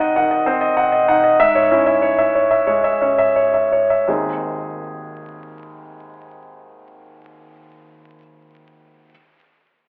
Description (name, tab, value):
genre	classical, virtuoso piano study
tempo	83-101 BPM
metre	4/4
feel	rubato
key	Ab major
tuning	A4 = 440 Hz
part	clear baby grand piano	solo	0.0-9.1 s	Ab1 to Gb5	-17 LUFS	equal	none
room	moderate recital hall reverb, RT60 1.7 s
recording	vinyl crackle, telephone sound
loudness	-16 LUFS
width	mono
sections	0.0-4.1 A section; 4.1-6.9 B section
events	slowing down 0.0-4.1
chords	0.0 Ab7; 1.4 Dbm/Ab; 4.1 Ab